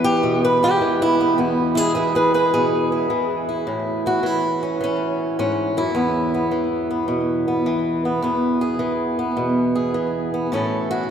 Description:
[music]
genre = acoustic country blues, solo or duo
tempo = 105 BPM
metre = 4/4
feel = swing 67% on 8ths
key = E major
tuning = A4 = 439 Hz
[part]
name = fingerpicked swing-style acoustic guitar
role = solo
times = 0.0-11.1 s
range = E2 to B4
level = -18 LUFS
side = equal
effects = slapback echo
[sound]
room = wet cathedral reverb, RT60 7.0 s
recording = in a vast, echoing space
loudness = -18 LUFS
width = side -8 dB against mid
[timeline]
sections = 0.0-1.4 A section; 1.4-11.1 B section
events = steel-string acoustic guitar solo 0.0-1.4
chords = 0.0 E; 3.7 A; 6.0 E; 10.5 A

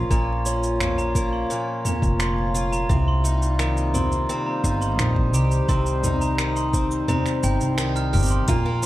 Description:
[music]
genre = folktronica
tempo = 86 BPM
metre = 4/4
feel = straight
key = unclear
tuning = A4 = 440 Hz
[part]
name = hand-pumped harmonium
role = sustained chords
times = 0.0-8.5 s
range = Bb2 to Db5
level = -31 LUFS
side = left 1 dB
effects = none
[part]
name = picked twelve-string acoustic guitar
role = arpeggios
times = 0.0-8.9 s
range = Bb2 to G4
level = -26 LUFS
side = left 2 dB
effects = tape echo
[part]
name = glockenspiel with soft plastic mallets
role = second line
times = 0.1-8.9 s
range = G5 to F6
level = -29 LUFS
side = right 4 dB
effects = tape echo
[part]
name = upright bass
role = bass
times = 0.1-8.9 s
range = F1 to C2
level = -23 LUFS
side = equal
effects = none
[part]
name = electronic kick drum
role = drums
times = 0.1-8.6 s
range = none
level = -23 LUFS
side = equal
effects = overdrive
[part]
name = organic electronic drum kit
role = drums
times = 0.1-8.9 s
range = finger snaps, hi-hat, shaker, toms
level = -28 LUFS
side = right 1 dB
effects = none
[sound]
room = small room ambience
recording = vinyl crackle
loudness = -20 LUFS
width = side -15 dB against mid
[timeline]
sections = 0.0-8.5 A section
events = kick drops out 7.1-8.5; band accent 7.8-8.1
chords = 0.0 Bbm; 2.9 Cm

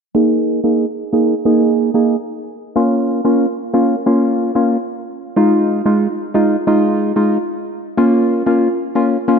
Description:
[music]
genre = dancehall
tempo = 92 BPM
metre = 4/4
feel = straight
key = Bb minor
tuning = A4 = 440 Hz
[part]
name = percussive organ stab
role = accompaniment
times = 0.1-9.4 s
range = Ab3 to Ab4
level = -13 LUFS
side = equal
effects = chorus, low-pass filter
[sound]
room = moderate lush hall reverb, RT60 2.5 s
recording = dark, warm production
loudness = -13 LUFS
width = side -6 dB against mid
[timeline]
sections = 0.2-9.4 A section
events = filter sweep on synth stab 0.2-9.4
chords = 0.2 Ebsus4; 2.8 Bbm; 5.4 Fm7; 8.0 Bbm

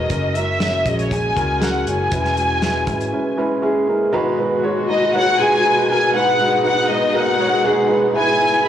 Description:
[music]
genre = piano-driven pop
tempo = 119 BPM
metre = 4/4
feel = straight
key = unclear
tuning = A4 = 440 Hz
[part]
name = warm studio violin section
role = melody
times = 0.0-8.6 s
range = C#5 to G#5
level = -18 LUFS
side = left 1 dB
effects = none
[part]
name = dark upright piano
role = accompaniment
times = 0.0-8.7 s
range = G#2 to C#5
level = -19 LUFS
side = right 1 dB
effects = none
[part]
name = vintage muted fingered electric bass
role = bass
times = 0.0-3.1 s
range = E1 to C#2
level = -25 LUFS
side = equal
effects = none
[part]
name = damped 70s drum kit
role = drums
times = 0.1-3.1 s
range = hi-hat, kick drum, snare drum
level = -25 LUFS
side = left 1 dB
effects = none
[part]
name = warm studio string section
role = sustained chords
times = 4.1-8.7 s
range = B2 to F#4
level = -24 LUFS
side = left 3 dB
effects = none
[sound]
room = moderate lush hall reverb, RT60 2.0 s, studio ambience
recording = blown-out, overdriven recording, overdrive, small room ambience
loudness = -15 LUFS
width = side -10 dB against mid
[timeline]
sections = 0.0-4.1 A section; 4.1-8.7 B section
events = none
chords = 0.1 F#add9; 2.1 C#m7/E; 4.1 G#m7; 8.2 E/G#

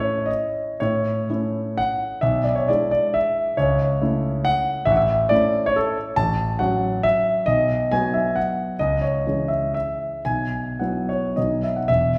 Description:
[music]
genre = classical, romantic triple-time dance for piano with dotted rhythms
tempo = 103-150 BPM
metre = 3/4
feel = rubato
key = A major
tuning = A4 = 440 Hz
[part]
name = warm concert grand piano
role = solo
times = 0.0-12.2 s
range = E1 to A5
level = -22 LUFS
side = equal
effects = none
[sound]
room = wet recital hall reverb, RT60 1.6 s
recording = heard from further back in the room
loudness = -22 LUFS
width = mono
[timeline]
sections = 0.8-11.9 A section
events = none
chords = 0.0 A; 2.2 E7/B; 3.6 A/C#; 4.9 A; 6.2 F#m/A; 7.5 B; 8.8 C#m; 10.2 Bsus4; 11.4 B

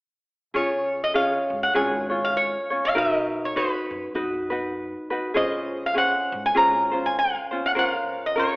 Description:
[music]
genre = Hawaiian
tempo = 100 BPM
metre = 4/4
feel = swing 60% on 8ths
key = Db major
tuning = A4 = 438 Hz
[part]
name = ukulele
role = accompaniment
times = 0.5-8.6 s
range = Db4 to Db5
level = -25 LUFS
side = equal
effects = none
[part]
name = upright bass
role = bass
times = 0.5-8.4 s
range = Ab1 to Gb2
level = -41 LUFS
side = equal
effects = none
[part]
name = metal-body resonator slide guitar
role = melody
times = 0.6-8.6 s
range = Cb5 to Bb5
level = -22 LUFS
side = equal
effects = none
[sound]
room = wet recital hall reverb, RT60 1.4 s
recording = telephone sound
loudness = -21 LUFS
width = side -30 dB against mid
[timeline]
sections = 0.5-8.6 A section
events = none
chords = 0.5 Db; 2.9 Cbmaj7; 5.4 Dbmaj7; 7.8 Bbmadd9/Db

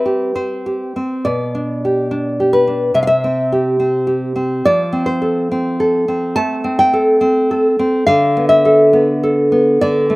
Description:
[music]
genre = romantic piece for solo classical guitar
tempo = 70 BPM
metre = 4/4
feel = rubato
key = unclear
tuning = A4 = 436 Hz
[part]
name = nylon-string guitar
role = solo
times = 0.0-10.2 s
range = B2 to A5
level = -13 LUFS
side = equal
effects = slapback echo
[sound]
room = little or no reverb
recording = recorded outdoors, with no room sound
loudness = -13 LUFS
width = side -22 dB against mid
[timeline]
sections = 0.0-10.2 A section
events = none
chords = 0.0 C5; 1.3 G/B; 3.0 C; 4.7 F; 8.1 Dm69

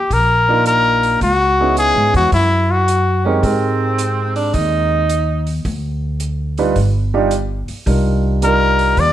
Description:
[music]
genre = jazz, small-group swing and bop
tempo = 108 BPM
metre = 4/4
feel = swing 67% on 8ths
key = unclear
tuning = A4 = 443 Hz
[part]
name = clear trumpet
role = melody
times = 0.0-3.3, 8.4-9.1 s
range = Fb4 to D5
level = -14 LUFS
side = left 2 dB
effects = none
[part]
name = upright bass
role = bass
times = 0.1-9.1 s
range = G1 to Ab2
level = -18 LUFS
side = equal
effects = none
[part]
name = vintage drum kit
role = drums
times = 0.1-9.1 s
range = hi-hat, kick drum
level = -26 LUFS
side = equal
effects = none
[part]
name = warm grand piano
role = accompaniment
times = 0.5-9.1 s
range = G3 to Cb5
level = -19 LUFS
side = right 4 dB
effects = none
[part]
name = clear alto saxophone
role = second line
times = 3.2-5.7 s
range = C4 to Eb4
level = -20 LUFS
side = right 4 dB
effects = none
[sound]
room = light reverb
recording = none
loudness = -13 LUFS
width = side -12 dB against mid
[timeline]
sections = 0.0-9.1 A section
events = none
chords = 0.0 Ebmaj7sus2; 1.2 Dbm7; 2.3 Gbadd9; 3.4 Abmaj9; 5.7 Dmadd11; 6.8 G5; 7.9 Cm11

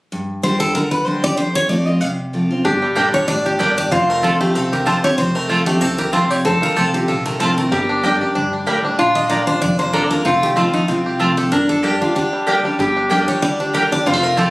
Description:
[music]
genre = bluegrass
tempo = 189 BPM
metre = 4/4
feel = swing 55% on 8ths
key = G minor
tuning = A4 = 440 Hz
[part]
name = picked steel-string acoustic guitar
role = accompaniment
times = 0.1-14.5 s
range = F2 to G4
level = -20 LUFS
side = equal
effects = none
[part]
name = picked steel-string acoustic guitar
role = melody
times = 0.4-14.5 s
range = Eb4 to F5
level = -20 LUFS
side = equal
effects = none
[part]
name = bluegrass banjo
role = melody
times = 2.6-14.5 s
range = G3 to G4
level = -22 LUFS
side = equal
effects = none
[part]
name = lap resonator guitar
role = second line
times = 2.6-14.5 s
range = D4 to A4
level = -20 LUFS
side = equal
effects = none
[part]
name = upright bass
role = bass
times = 2.7-14.5 s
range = F1 to D2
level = -28 LUFS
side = equal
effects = none
[part]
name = mandolin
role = stabs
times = 3.0-14.5 s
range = Bb3 to Bb5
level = -19 LUFS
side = right 1 dB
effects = none
[sound]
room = moderate studio reverb, RT60 0.6 s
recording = recorded on a phone in the room, studio reverb, compression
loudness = -14 LUFS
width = side -20 dB against mid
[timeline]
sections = 0.1-2.6 A section; 2.6-12.8 B section; 12.8-14.5 B section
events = none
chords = 0.1 Gm; 1.4 F; 2.6 Gm; 3.9 F; 7.7 Gm; 9.0 Bb; 10.3 F; 11.5 Gm

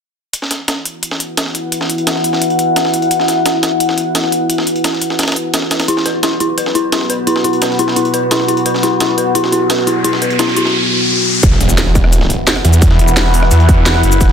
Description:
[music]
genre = dark technical drum and bass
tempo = 173 BPM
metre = 4/4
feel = straight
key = unclear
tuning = A4 = 440 Hz
[part]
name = deep dark ambient pad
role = sustained chords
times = 1.2-14.3 s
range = B3 to F#5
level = -16 LUFS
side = left 1 dB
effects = chorus, built-in reverb, sidechain pumping
[part]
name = breakbeat sampler-style drum kit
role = drums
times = 0.3-14.3 s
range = hi-hat, snare drum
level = -20 LUFS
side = right 1 dB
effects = high-pass filter on hats, studio reverb, high-pass filter on snare
[part]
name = drum and bass drum kit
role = drums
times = 0.3-14.3 s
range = cabasa, hi-hat, rim click, snare drum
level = -18 LUFS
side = equal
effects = studio reverb
[part]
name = dark detuned synth bell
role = arpeggios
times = 5.9-10.6 s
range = E4 to B4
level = -16 LUFS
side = left 2 dB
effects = chorus, sidechain pumping, ping-pong delay
[part]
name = riser and impact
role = sound effects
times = 9.5-12.8 s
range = none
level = -18 LUFS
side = equal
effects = none
[part]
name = snarling distorted saw bass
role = bass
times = 11.4-14.3 s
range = E1 to E2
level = -11 LUFS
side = equal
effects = distortion, overdrive, sidechain pumping
[part]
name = electronic kick drum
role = drums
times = 11.4-14.3 s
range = none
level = -12 LUFS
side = equal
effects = distortion, studio reverb
[sound]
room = light reverb, digital ambience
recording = dense, heavily limited modern master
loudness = -11 LUFS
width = side -7 dB against mid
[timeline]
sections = 0.3-11.4 A section; 11.4-14.3 B section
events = riser 9.5-11.4; drop 11.4-14.3; impact 11.4-12.8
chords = 0.3 E5; 5.9 B5; 11.4 E5

